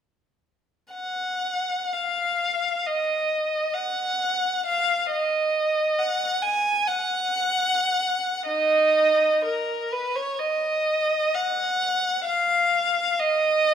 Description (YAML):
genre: classical, free, expressive piece for unaccompanied violin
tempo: 64 BPM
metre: 4/4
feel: uneven beats, rubato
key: Eb minor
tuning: A4 = 439 Hz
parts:
  - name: rich violin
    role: solo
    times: 0.9-13.7 s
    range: Eb4 to Ab5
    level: -21 LUFS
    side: equal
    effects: none
room: moderate scoring stage reverb, RT60 1.6 s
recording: none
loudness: -21 LUFS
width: side -8 dB against mid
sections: 0.9-8.5 A section; 8.5-13.7 B section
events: none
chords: none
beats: | 0.94 1.94 2.85 3.75 | 4.66 5.56 6.43 7.33 | 8.48 9.44 10.38 11.34 | 12.27 13.19